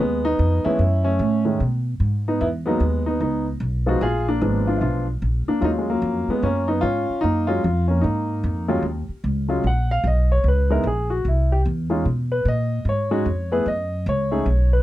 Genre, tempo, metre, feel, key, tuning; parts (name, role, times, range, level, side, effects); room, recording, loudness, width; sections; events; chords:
jazz piano trio; 149 BPM; 4/4; swing 64% on 8ths; Eb minor; A4 = 439 Hz
warm baby grand piano; melody; 0.0-14.8 s; Eb2 to Gb5; -22 LUFS; equal
upright bass; bass; 0.0-14.8 s; Ab1 to Cb3; -21 LUFS; equal
light reverb; dry, close 1970s-style studio recording; -19 LUFS; side -15 dB against mid
0.0-8.8 A section; 8.8-14.8 B section
grand piano solo 8.8-14.8
0.0 B6; 0.8 Gbm; 1.6 Abm; 2.4 Emaj7; 4.0 Bb7b9; 5.6 Ebm11; 8.8 Ebm7; 10.4 Db7(no3); 11.2 C; 12.0 B69; 13.7 Gb5